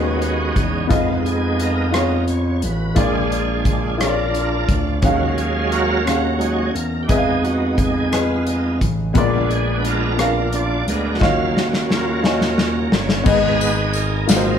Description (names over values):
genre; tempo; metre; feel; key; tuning
slow gospel; 58 BPM (dotted quarters); 6/8; straight; Eb minor; A4 = 437 Hz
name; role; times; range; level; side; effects
clear grand piano; accompaniment; 0.0-14.6 s; Ab2 to Ab5; -22 LUFS; left 3 dB; none
bright tonewheel organ; sustained chords; 0.0-14.6 s; Gb3 to F5; -22 LUFS; right 3 dB; fast rotary speaker, overdrive, chorus vibrato
smooth gliding synth bass; bass; 0.0-14.6 s; G1 to F2; -22 LUFS; equal; none
modern studio drum kit; drums; 0.2-14.5 s; crash cymbal, hi-hat, kick drum, rim click, snare drum; -21 LUFS; equal; none
tambourine; percussion; 13.6-14.6 s; none; -28 LUFS; left 6 dB; none
room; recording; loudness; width
moderate large studio reverb, RT60 1.1 s; band playing live in one room; -16 LUFS; side -8 dB against mid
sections
0.0-13.3 A section; 13.3-14.6 B section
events
tonewheel organ solo 0.0-13.3, 13.3-14.6; drum fill 11.2-13.3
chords
0.0 B69/D#; 0.9 Fm7b5; 3.0 Bb7; 5.0 Ebm11; 7.1 Fm7b5; 9.2 Bb7b9; 11.2 Ebm9; 13.3 Abm